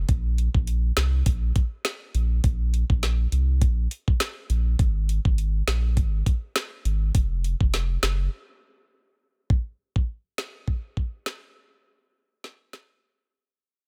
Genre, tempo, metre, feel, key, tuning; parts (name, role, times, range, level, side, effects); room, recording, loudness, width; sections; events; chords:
dancehall; 102 BPM; 4/4; swing 56% on 16ths; A4 = 440 Hz
round analog bass; bass; 0.0-8.3 s; F1 to C2; -25 LUFS; equal
island pop drum kit; drums; 0.1-12.9 s; hi-hat, kick drum, snare drum; -25 LUFS; equal
little or no reverb; dense, heavily limited modern master; -25 LUFS; mono
0.0-9.5 A section; 9.5-13.9 B section
break 8.3-9.5, 13.0-13.9; fade-out 9.5-13.9